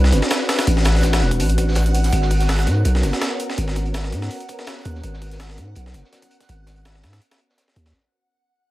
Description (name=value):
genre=drum and bass, jungle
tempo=165 BPM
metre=4/4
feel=swing 53% on 16ths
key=unclear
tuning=A4 = 440 Hz
part: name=soft string machine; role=sustained chords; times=0.0-7.9 s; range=B3 to B4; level=-26 LUFS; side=equal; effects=ensemble chorus
part: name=long sustained 808-style bass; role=bass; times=0.0-7.9 s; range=E1 to G#2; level=-18 LUFS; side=equal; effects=none
part: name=breakbeat sampler-style drum kit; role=drums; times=0.0-7.9 s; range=hi-hat, kick drum, snare drum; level=-25 LUFS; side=equal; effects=high-pass filter on snare, high-pass filter on hats, high-pass filter on kick
part: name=backwards swelling texture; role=texture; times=0.0-8.0 s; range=F#5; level=-32 LUFS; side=right 2 dB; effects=built-in reverb
part: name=crunchy breakbeat drum kit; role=drums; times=0.1-7.9 s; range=hi-hat, snare drum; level=-34 LUFS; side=equal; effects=high-pass filter on hats, high-pass filter on snare, high-pass filter on room
room=little or no reverb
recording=vinyl crackle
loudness=-17 LUFS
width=side -17 dB against mid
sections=0.0-7.9 A section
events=fade-out 0.0-7.9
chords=0.0 Amadd9; 2.1 G#m11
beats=0.31 | 0.67 1.03 1.40 1.76 | 2.12 2.49 2.85 3.21 | 3.58 3.94 4.31 4.67 | 5.03 5.40 5.76 6.12 | 6.49 6.85 7.21 7.58